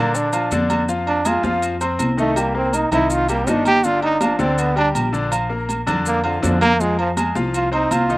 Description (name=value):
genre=latin, salsa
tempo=162 BPM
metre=4/4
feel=straight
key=unclear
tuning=A4 = 440 Hz
part: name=brilliant trombone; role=melody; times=0.0-8.2 s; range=D3 to G4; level=-19 LUFS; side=right 2 dB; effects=none
part: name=bright grand piano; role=accompaniment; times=0.0-8.2 s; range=D3 to C6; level=-23 LUFS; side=left 3 dB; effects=none
part: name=upright bass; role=bass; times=0.0-8.2 s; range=G1 to Bb2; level=-24 LUFS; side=equal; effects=none
part: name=maracas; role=percussion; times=0.1-8.2 s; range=none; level=-31 LUFS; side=left 3 dB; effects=none
part: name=congas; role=percussion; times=0.2-8.2 s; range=none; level=-25 LUFS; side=left 1 dB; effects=none
part: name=agogo bells and timbales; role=percussion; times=0.3-8.1 s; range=none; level=-25 LUFS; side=right 3 dB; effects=slapback echo
room=little or no reverb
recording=recorded outdoors, with no room sound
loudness=-16 LUFS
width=side -19 dB against mid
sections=0.0-8.2 A section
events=trombone solo 0.0-8.2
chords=0.0 Bb; 0.9 Fm; 2.4 Cm7; 3.8 G5; 5.3 Bb; 6.8 Fm